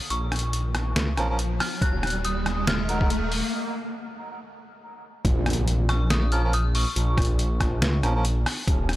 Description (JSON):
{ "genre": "deep dubstep", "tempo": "140 BPM", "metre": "4/4", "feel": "swing 56% on 16ths, half-time", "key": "Bb minor", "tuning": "A4 = 441 Hz", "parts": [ { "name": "dark detuned synth bell", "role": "melody", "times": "0.0-8.0 s", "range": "Db6 to Gb6", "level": "-32 LUFS", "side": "left 1 dB", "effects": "chorus, tremolo, dub echo" }, { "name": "riser and impact", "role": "sound effects", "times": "0.0-7.0 s", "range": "none", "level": "-32 LUFS", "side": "equal", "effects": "none" }, { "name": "dark detuned saw bass", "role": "bass", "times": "0.1-9.0 s", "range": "Eb1 to Db2", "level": "-24 LUFS", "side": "equal", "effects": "none" }, { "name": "trip hop sampler-style drum kit", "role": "drums", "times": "0.1-9.0 s", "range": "hi-hat, rim click, snare drum", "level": "-28 LUFS", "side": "equal", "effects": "none" }, { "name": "melodica", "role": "stabs", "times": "1.2-3.1, 6.3-8.2 s", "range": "F3 to Bb4", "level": "-34 LUFS", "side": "right 2 dB", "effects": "dub echo" }, { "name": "electronic kick drum", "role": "drums", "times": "1.8-8.8 s", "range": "none", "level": "-24 LUFS", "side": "equal", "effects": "none" } ], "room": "digital ambience", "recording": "dry, gritty hardware recording", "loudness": "-22 LUFS", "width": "side -16 dB against mid", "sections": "0.0-5.2 A section; 5.2-9.0 B section", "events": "build-up 0.0-5.2; riser 0.0-3.5; break 3.5-5.2; drop 5.2-9.0; impact 5.2-7.0", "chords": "0.0 Bbm; 1.8 N.C.; 5.2 Bbm", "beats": "| 0.10 0.53 0.96 1.39 | 1.82 2.25 2.68 3.10 | 3.53 3.96 4.39 4.82 | 5.25 5.68 6.11 6.53 | 6.96 7.39 7.82 8.25 | 8.68" }